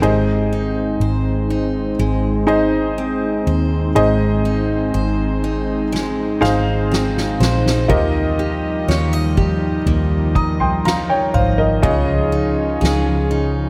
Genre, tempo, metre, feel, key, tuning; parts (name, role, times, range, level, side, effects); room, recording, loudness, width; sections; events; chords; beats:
pop ballad; 61 BPM; 4/4; straight; Ab major; A4 = 442 Hz
warm concert grand piano; accompaniment; 0.0-13.7 s; Ab2 to Eb6; -23 LUFS; equal
airy breathy pad; sustained chords; 0.0-13.7 s; F3 to Eb4; -25 LUFS; equal; chorus
picked steel-string acoustic guitar; arpeggios; 0.0-13.7 s; Ab2 to Eb5; -28 LUFS; equal
vintage muted fingered electric bass; bass; 0.0-13.7 s; Ab1 to Eb2; -23 LUFS; equal
soft-mallet drum kit; drums; 5.9-13.1 s; kick drum, snare drum, toms; -25 LUFS; equal
light reverb, small room ambience; -18 LUFS; mono
0.0-13.7 A section
drum fill 5.9-7.9
0.0 Ab; 7.9 Ebadd9; 11.8 Dbadd9
| 0.03 1.01 2.00 2.98 | 3.96 4.95 5.93 6.92 | 7.90 8.88 9.87 10.85 | 11.83 12.82